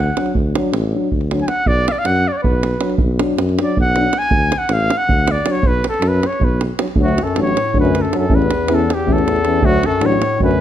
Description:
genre	balkan folk, Balkan brass band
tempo	317 BPM (eighths)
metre	7/8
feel	straight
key	B dorian sharp4, D major from 7.0 s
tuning	A4 = 437 Hz
part	mellow trumpet	melody	0.0-10.6 s	F#4 to G#5	-19 LUFS	equal	none
part	mellow tuba	bass	0.0-10.6 s	A1 to F#2	-20 LUFS	left 1 dB	none
part	dark euphonium	accompaniment	0.2-10.5 s	C#4 to D4	-23 LUFS	left 7 dB	none
part	warm euphonium	accompaniment	0.2-10.5 s	E3 to F#3	-24 LUFS	right 7 dB	none
part	davul	percussion	0.2-10.6 s	none	-20 LUFS	right 2 dB	none
part	warm bass clarinet	second line	7.0-10.6 s	D2 to A2	-20 LUFS	left 5 dB	none
room	light reverb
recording	close, detailed microphones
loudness	-14 LUFS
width	side -11 dB against mid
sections	0.0-7.0 A section; 7.0-10.6 B section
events	trumpet solo 0.0-7.0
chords	0.0 D; 1.7 Bm; 4.3 D; 5.6 B5; 7.0 D; 8.3 A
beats	0.15 | 0.34 0.53 0.72 0.91 1.09 1.28 1.47 | 1.66 1.85 2.04 2.23 2.42 2.61 2.80 | 2.99 3.18 3.37 3.55 3.74 3.93 4.12 | 4.31 4.50 4.69 4.88 5.07 5.26 5.45 | 5.64 5.83 6.01 6.20 6.39 6.58 6.77 | 6.96 7.15 7.34 7.53 7.72 7.91 8.10 | 8.29 8.48 8.67 8.86 9.05 9.24 9.43 | 9.62 9.80 9.99 10.18 10.37 10.56

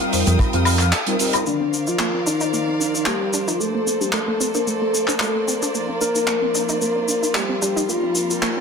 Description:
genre	nu-disco, nu disco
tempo	112 BPM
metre	4/4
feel	swing 53% on 16ths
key	C dorian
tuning	A4 = 440 Hz
part	mellow synth brass	accompaniment	0.0-8.6 s	Eb3 to D5	-29 LUFS	equal	chorus, sidechain pumping
part	rich studio violin section	sustained chords	0.0-8.6 s	G3 to Eb6	-28 LUFS	right 1 dB	sidechain pumping
part	electric guitar with an envelope filter	riff	0.0-1.4 s	Eb4 to F5	-28 LUFS	left 2 dB	wide subtle chorus, ping-pong delay
part	damped 70s drum kit	drums	0.0-8.5 s	handclaps, hi-hat, shaker, woodblock	-23 LUFS	left 1 dB	none
part	chorused synth bass	bass	0.1-0.9 s	F2	-18 LUFS	equal	tube saturation
part	kick drum	drums	0.4-0.5 s	none	-19 LUFS	equal	none
part	soft octave-layered synth lead	melody	1.5-8.6 s	D4 to Bb4	-22 LUFS	left 2 dB	chorus, tape echo
part	analog pluck	arpeggios	1.5-8.6 s	A3 to F4	-28 LUFS	right 4 dB	chorus, sidechain pumping, tape echo
room	moderate plate reverb, RT60 1.4 s, small room ambience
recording	dense, heavily limited modern master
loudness	-18 LUFS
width	side -6 dB against mid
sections	0.0-1.5 A section; 1.5-8.6 B section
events	break 0.9-1.5; filter sweep on analog polysynth 1.5-8.6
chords	0.0 F9sus4; 1.5 Cm11; 3.6 Bbmaj9; 5.7 Cm11; 7.9 F9sus4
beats	0.39 0.93 | 1.46 2.00 2.53 3.07 | 3.60 4.14 4.68 5.21 | 5.75 6.28 6.82 7.35 | 7.89 8.43

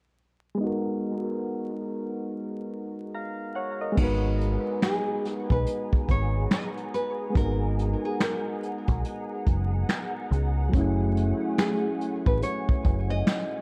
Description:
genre	lo-fi hip hop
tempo	71 BPM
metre	4/4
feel	swing 60% on 16ths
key	G# minor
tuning	A4 = 436 Hz
part	soft electric-piano-like synth keys	accompaniment	0.5-13.6 s	F#3 to A#5	-33 LUFS	equal	chorus, cassette tape, low-pass filter, tape echo
part	hollow soft pad	sustained chords	4.6-13.6 s	A3 to A#5	-39 LUFS	equal	ensemble chorus, low-pass filter
part	deep dub picked electric bass	bass	4.0-13.2 s	F#1 to C#2	-28 LUFS	equal	none
part	vintage brush drum kit	drums	4.0-13.5 s	crash cymbal, finger snaps, hi-hat, kick drum, snare drum	-28 LUFS	equal	none
part	nylon-string guitar	melody	4.8-13.6 s	G#4 to D#5	-34 LUFS	equal	low-pass filter, tape echo
room	light reverb, small room ambience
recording	echo-heavy mix, vinyl crackle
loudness	-27 LUFS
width	mono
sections	0.6-4.0 A section; 4.0-13.6 B section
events	filter sweep on synth keys 0.6-4.0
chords	0.6 G#m9; 10.7 F#m9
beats	| 0.59 1.44 2.28 3.13 | 3.97 4.82 5.66 6.51 | 7.35 8.20 9.04 9.89 | 10.73 11.58 12.43 13.27

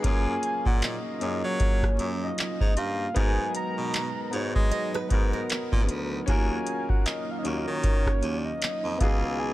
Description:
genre	contemporary R&B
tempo	77 BPM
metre	4/4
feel	swing 58% on 16ths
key	F# major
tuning	A4 = 440 Hz
part	soft octave-layered synth lead	melody	0.0-9.5 s	C#5 to A#5	-32 LUFS	equal	chorus, digital delay
part	warm concert grand piano	accompaniment	0.0-9.5 s	A#3 to C#5	-33 LUFS	left 3 dB	none
part	chorused pulse-width pad	sustained chords	0.0-9.5 s	C#3 to E#5	-36 LUFS	right 3 dB	sidechain pumping
part	nylon-string guitar	arpeggios	0.0-6.2 s	A#4 to D#5	-35 LUFS	right 7 dB	digital delay
part	bright baritone saxophone	bass	0.0-9.5 s	C#2 to G#3	-31 LUFS	equal	none
part	booming analog drum machine	drums	0.0-9.2 s	handclaps, hi-hat, kick drum, rim click	-25 LUFS	equal	none
room	studio ambience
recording	none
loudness	-24 LUFS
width	side -16 dB against mid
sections	0.0-9.5 A section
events	none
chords	0.0 F#maj7; 3.2 G#m9; 6.3 D#m9; 9.0 C#9sus4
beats	| 0.04 0.82 1.60 2.38 | 3.16 3.94 4.72 5.50 | 6.27 7.05 7.83 8.61 | 9.39

